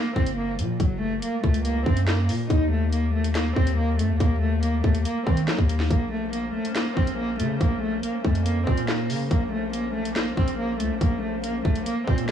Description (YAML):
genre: hip hop, drill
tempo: 141 BPM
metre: 4/4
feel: half-time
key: Bb harmonic minor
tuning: A4 = 441 Hz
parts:
  - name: dark cello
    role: melody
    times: 0.0-12.3 s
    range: F3 to Eb4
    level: -26 LUFS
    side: equal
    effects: low-pass filter, digital delay
  - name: hard-hitting 808-style bass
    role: bass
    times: 0.2-12.3 s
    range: Gb1 to Gb3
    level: -26 LUFS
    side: left 1 dB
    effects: none
  - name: drill drum kit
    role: drums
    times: 0.2-12.3 s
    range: handclaps, hi-hat, kick drum, snare drum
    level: -24 LUFS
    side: equal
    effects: none
  - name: glassy FM pad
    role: sustained chords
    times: 6.1-12.3 s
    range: Bb3 to C5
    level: -34 LUFS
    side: equal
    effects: ensemble chorus, built-in reverb
room: little or no reverb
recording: blown-out, overdriven recording, vinyl crackle, overdrive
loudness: -22 LUFS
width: side -9 dB against mid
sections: 0.0-12.3 A section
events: none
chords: 0.0 Gb; 2.5 Eb5; 5.9 Bbmadd9